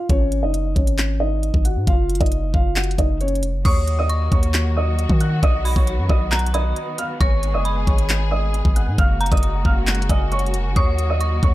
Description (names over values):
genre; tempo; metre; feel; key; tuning
hip hop, trap; 135 BPM; 4/4; half-time; Eb minor; A4 = 440 Hz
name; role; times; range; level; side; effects
dark concert grand piano; melody; 0.0-11.5 s; Db4 to Gb6; -25 LUFS; equal; low-pass filter
long sustained 808-style bass; bass; 0.1-11.5 s; F1 to Eb3; -21 LUFS; equal; none
trap drum kit; drums; 0.1-11.5 s; crash cymbal, handclaps, hi-hat, kick drum; -19 LUFS; equal; none
dark detuned synth bell; second line; 3.6-11.5 s; Ab5 to Eb6; -30 LUFS; equal; chorus, tremolo, ping-pong delay
warm symphonic string section; sustained chords; 3.6-11.5 s; Db3 to Ab4; -29 LUFS; left 1 dB; none
room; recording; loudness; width
digital ambience; dark, warm production; -17 LUFS; side -16 dB against mid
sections
0.0-3.6 A section; 3.6-11.5 B section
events
none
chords
0.1 Ab5; 1.9 Gb5; 3.6 Ebm; 5.4 B; 7.2 Abm; 9.0 Gbadd9; 10.8 Ebm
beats
| 0.10 0.54 0.98 1.43 | 1.87 2.32 2.76 3.21 | 3.65 4.09 4.54 4.98 | 5.43 5.87 6.32 6.76 | 7.21 7.65 8.10 8.54 | 8.98 9.43 9.87 10.32 | 10.76 11.21